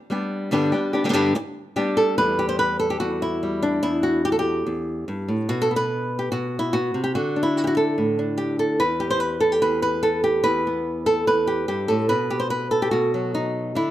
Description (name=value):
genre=flamenco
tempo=145 BPM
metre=4/4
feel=straight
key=E minor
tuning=A4 = 439 Hz
part: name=flamenco guitar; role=solo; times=0.1-13.9 s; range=E2 to C5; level=-20 LUFS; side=equal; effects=none
room=light reverb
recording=none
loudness=-20 LUFS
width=side -13 dB against mid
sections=0.0-2.2 A section; 2.2-13.9 B section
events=none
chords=0.0 G; 2.2 Em; 5.5 B5; 7.2 D; 8.8 Em; 12.1 B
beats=0.11 | 0.52 0.94 1.35 1.77 | 2.18 2.60 3.01 3.42 | 3.84 4.25 4.67 5.08 | 5.50 5.91 6.33 6.74 | 7.15 7.56 7.98 8.39 | 8.80 9.21 9.63 10.04 | 10.45 10.87 11.28 11.69 | 12.11 12.52 12.94 13.35 | 13.77